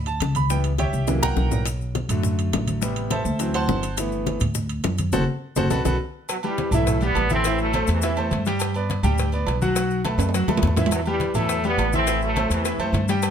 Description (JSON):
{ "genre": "latin, salsa", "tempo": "208 BPM", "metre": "4/4", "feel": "straight", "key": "E minor", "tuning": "A4 = 441 Hz", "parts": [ { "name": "bright grand piano", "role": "accompaniment", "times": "0.0-13.3 s", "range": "C3 to C6", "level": "-25 LUFS", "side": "equal", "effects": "none" }, { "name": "upright bass", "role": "bass", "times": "0.0-13.3 s", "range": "F#1 to G2", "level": "-24 LUFS", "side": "equal", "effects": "none" }, { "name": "congas", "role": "percussion", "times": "0.1-13.3 s", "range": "none", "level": "-29 LUFS", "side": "equal", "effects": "none" }, { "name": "maracas", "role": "percussion", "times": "0.1-13.3 s", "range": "none", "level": "-35 LUFS", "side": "left 9 dB", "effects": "none" }, { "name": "timbales and agogo bells", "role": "percussion", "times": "0.1-13.3 s", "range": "none", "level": "-30 LUFS", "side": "right 7 dB", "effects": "none" }, { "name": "bongos and cowbell", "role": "percussion", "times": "0.2-13.3 s", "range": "none", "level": "-31 LUFS", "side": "left 9 dB", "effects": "none" }, { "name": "clear trombone section", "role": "melody", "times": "6.3-8.3, 10.9-12.9 s", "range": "B2 to C4", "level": "-25 LUFS", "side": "equal", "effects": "plate reverb" } ], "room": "light reverb", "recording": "none", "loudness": "-20 LUFS", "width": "side -8 dB against mid", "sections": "0.0-6.3 A section; 6.3-13.3 B section", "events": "grand piano solo 0.0-6.3; drum fill 0.8-1.7, 5.4-6.3, 10.2-10.9; band accent 5.1-6.3", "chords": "0.0 G (rootless); 0.5 C#m7b5; 1.1 C7#11; 1.7 Bm7; 2.8 Am9; 3.4 D9; 4.0 G69; 5.1 F#dim; 5.7 B5; 6.3 Emadd9; 7.4 Am; 8.6 G; 9.8 B5; 10.9 Emadd9; 12.1 Am", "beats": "0.22 | 0.51 0.80 1.08 1.37 | 1.66 1.95 2.24 2.53 | 2.82 3.11 3.40 3.69 | 3.98 4.27 4.56 4.84 | 5.13 5.42 5.71 6.00 | 6.29 6.58 6.87 7.16 | 7.45 7.74 8.03 8.31 | 8.60 8.89 9.18 9.47 | 9.76 10.05 10.34 10.62 | 10.91 11.20 11.49 11.78 | 12.07 12.36 12.65 12.94 | 13.22" }